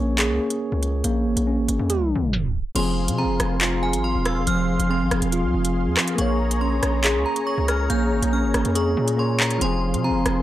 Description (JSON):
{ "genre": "hip hop, drill", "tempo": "140 BPM", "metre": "4/4", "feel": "half-time", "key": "F minor", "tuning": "A4 = 440 Hz", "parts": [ { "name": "soft electric-piano-like synth keys", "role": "accompaniment", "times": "0.0-10.4 s", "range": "F3 to Db5", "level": "-30 LUFS", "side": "left 2 dB", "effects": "chorus, tremolo" }, { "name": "mellow tine electric piano", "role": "arpeggios", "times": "0.0-10.4 s", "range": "F3 to Ab4", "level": "-24 LUFS", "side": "right 1 dB", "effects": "medium stereo tremolo, analog delay" }, { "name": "distorted 808-style bass", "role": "bass", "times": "0.0-10.4 s", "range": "E1 to C3", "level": "-24 LUFS", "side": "equal", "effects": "distortion" }, { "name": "drill drum kit", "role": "drums", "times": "0.2-10.4 s", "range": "crash cymbal, handclaps, hi-hat, rim click", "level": "-25 LUFS", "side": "equal", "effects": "none" }, { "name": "metallic FM bell", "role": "second line", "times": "2.8-10.4 s", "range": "Ab5 to G6", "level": "-29 LUFS", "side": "right 2 dB", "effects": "chorus, phaser, analog delay" }, { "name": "warm analog pad", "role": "sustained chords", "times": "2.8-10.4 s", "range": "Ab4 to C6", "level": "-30 LUFS", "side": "equal", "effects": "chorus" } ], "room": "little or no reverb", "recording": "dry, gritty hardware recording, tape stop", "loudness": "-19 LUFS", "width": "side -14 dB against mid", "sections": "0.0-2.8 A section; 2.8-10.4 B section", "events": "tape stop 1.9-2.8; break 2.3-2.8", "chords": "0.0 Bbm7; 2.8 Fm; 6.2 Bbm7; 9.6 Fm", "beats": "0.19 0.61 | 1.04 1.47 1.90 2.33 | 2.76 3.19 3.61 4.04 | 4.47 4.90 5.33 5.76 | 6.19 6.61 7.04 7.47 | 7.90 8.33 8.76 9.19 | 9.61 10.04" }